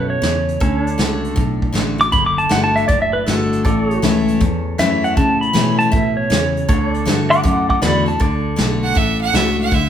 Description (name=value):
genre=honky-tonk and classic country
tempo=158 BPM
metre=4/4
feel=swing 66% on 8ths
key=D major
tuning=A4 = 440 Hz
part: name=pedal steel guitar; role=melody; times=0.0-8.2 s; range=A4 to D6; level=-18 LUFS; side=equal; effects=none
part: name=picked steel-string acoustic guitar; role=accompaniment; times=0.0-9.9 s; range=E2 to F#4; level=-20 LUFS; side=left 3 dB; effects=none
part: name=pedal steel guitar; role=sustained chords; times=0.0-9.9 s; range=D4 to D5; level=-28 LUFS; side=right 1 dB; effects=none
part: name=fingered electric bass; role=bass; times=0.0-9.9 s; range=F#1 to C#3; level=-21 LUFS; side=right 1 dB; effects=none
part: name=soft brush drum kit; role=drums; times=0.2-9.8 s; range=hi-hat, kick drum, snare drum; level=-20 LUFS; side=equal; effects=none
part: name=bright fiddle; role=second line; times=8.8-9.9 s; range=E5 to F#5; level=-18 LUFS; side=right 6 dB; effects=none
room=moderate large studio reverb, RT60 1.1 s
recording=band playing live in one room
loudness=-14 LUFS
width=side -9 dB against mid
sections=0.0-8.2 A section; 8.2-9.9 A section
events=pedal steel guitar solo 0.0-8.2; fiddle solo 8.2-9.9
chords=0.0 A; 0.6 D; 3.6 A; 6.7 D